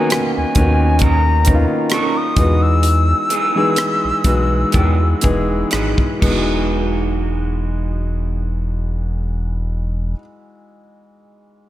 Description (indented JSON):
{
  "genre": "R&B, neo-soul",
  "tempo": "58-68 BPM",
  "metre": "4/4",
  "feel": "swing 54% on 16ths",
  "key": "E major",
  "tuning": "A4 = 435 Hz",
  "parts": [
    { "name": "silver concert flute", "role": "melody", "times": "0.0-5.7 s", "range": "G#5 to E6", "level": "-20 LUFS", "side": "left 1 dB", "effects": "slapback echo" },
    { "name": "electric guitar through a small old amp", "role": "second line", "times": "0.0-10.2 s", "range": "F#3 to A#4", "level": "-26 LUFS", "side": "right 4 dB", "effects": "spring reverb, slapback echo" },
    { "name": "bright grand piano", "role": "accompaniment", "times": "0.0-11.7 s", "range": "D#3 to G#4", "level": "-20 LUFS", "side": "left 1 dB", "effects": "slapback echo" },
    { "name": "tight funk drum kit", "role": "drums", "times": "0.1-6.5 s", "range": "crash cymbal, hi-hat, kick drum, rim click", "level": "-19 LUFS", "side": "equal", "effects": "none" },
    { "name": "round analog bass", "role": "bass", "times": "0.4-10.1 s", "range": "E1 to E2", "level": "-18 LUFS", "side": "equal", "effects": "none" }
  ],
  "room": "moderate lush hall reverb, RT60 2.7 s",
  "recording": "big arena sound",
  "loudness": "-14 LUFS",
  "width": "side -14 dB against mid",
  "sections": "0.0-6.7 A section; 6.7-10.9 B section",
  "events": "slowing down 0.0-6.7",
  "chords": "0.0 Bmaj9; 2.4 Emaj9"
}